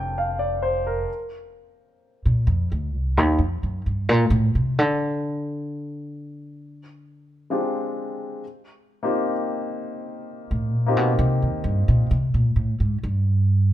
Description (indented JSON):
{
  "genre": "jazz ballad",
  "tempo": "65 BPM",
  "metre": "4/4",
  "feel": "swing 66% on 8ths",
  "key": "Bb major",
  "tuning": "A4 = 440 Hz",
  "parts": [
    { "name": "clear baby grand piano", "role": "accompaniment", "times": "0.0-1.2, 7.5-12.1 s", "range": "Ab3 to A5", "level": "-25 LUFS", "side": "left 2 dB", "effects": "none" },
    { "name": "upright bass", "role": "bass", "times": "0.0-13.7 s", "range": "F1 to D3", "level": "-20 LUFS", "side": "equal", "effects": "none" }
  ],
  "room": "light reverb",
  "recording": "minimal, uncompressed stereo recording",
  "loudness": "-20 LUFS",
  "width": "side -12 dB against mid",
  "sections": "0.0-1.1 A section; 1.1-13.7 A section",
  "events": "upright bass solo 1.1-13.7",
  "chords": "0.0 Bbmaj9; 4.8 N.C.; 6.6 Dm7b5; 8.4 Eb69; 12.1 Gmadd9",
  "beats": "0.16 | 1.08 2.00 2.92 3.84 | 4.76 5.67 6.59 7.51 | 8.42 9.34 10.25 11.17 | 12.08 13.00"
}